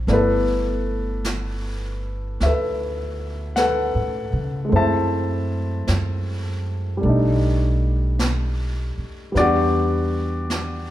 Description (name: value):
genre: jazz ballad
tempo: 52 BPM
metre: 4/4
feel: swing 68% on 8ths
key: unclear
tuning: A4 = 442 Hz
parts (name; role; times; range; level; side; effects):
- warm grand piano; accompaniment; 0.0-10.9 s; G3 to A5; -22 LUFS; left 1 dB; none
- upright bass; bass; 0.0-10.9 s; G1 to C#3; -23 LUFS; right 1 dB; none
- jazz brush drum kit; drums; 0.1-10.9 s; brushed snare drum, hi-hat, snare drum; -31 LUFS; right 1 dB; none
room: moderate recital hall reverb, RT60 1.4 s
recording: recorded in a church or concert hall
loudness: -20 LUFS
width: side -13 dB against mid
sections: 0.0-10.9 A section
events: none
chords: 0.1 G69; 4.7 F#m7b5; 7.0 B7alt; 9.3 Em9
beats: | 0.08 1.24 2.40 3.56 | 4.72 5.88 7.04 8.20 | 9.35 10.50